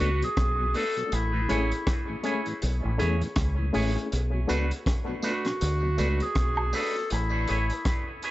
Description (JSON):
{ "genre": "dub reggae", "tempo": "80 BPM", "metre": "4/4", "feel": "swing 59% on 16ths", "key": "B dorian", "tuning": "A4 = 440 Hz", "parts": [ { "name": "clear clarinet", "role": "melody", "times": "0.0-8.2 s", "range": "E4 to A4", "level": "-31 LUFS", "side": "equal", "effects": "dub echo" }, { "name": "electric guitar with an envelope filter", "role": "accompaniment", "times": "0.0-8.3 s", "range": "A3 to C#5", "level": "-33 LUFS", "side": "right 3 dB", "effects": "high-pass filter, dub echo" }, { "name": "mellow tonewheel organ", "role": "accompaniment", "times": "0.0-8.3 s", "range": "A2 to D4", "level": "-36 LUFS", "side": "left 2 dB", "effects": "chorus vibrato, slow rotary speaker, high-pass filter" }, { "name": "overdriven reed electric piano", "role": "stabs", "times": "0.0-4.7 s", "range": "A3 to G#4", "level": "-34 LUFS", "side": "left 4 dB", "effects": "fast tremolo, high-pass filter, dub echo" }, { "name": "deep dub fingered electric bass", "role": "bass", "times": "0.0-7.7 s", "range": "A1 to E2", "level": "-26 LUFS", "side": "equal", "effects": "none" }, { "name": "crunchy breakbeat drum kit", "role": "drums", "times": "0.0-8.3 s", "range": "hi-hat, kick drum, rim click", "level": "-31 LUFS", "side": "equal", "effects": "none" }, { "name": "tambourine and woodblock", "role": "percussion", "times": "4.5-6.9 s", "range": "none", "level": "-36 LUFS", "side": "right 2 dB", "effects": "high-pass filter on perc, dub echo" } ], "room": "light reverb, small room ambience", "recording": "echo-heavy mix, nothing above 7.9 kHz", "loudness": "-24 LUFS", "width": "side -16 dB against mid", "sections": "0.0-8.3 A section", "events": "break 0.0-4.1; filter sweep 4.1-8.3; part muted 7.1-8.3", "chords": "0.0 Bm7; 1.1 Amaj7; 4.1 Bm7; 7.1 Amaj7", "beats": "0.37 | 1.12 1.87 2.62 3.36 | 4.11 4.86 5.61 6.36 | 7.10 7.85" }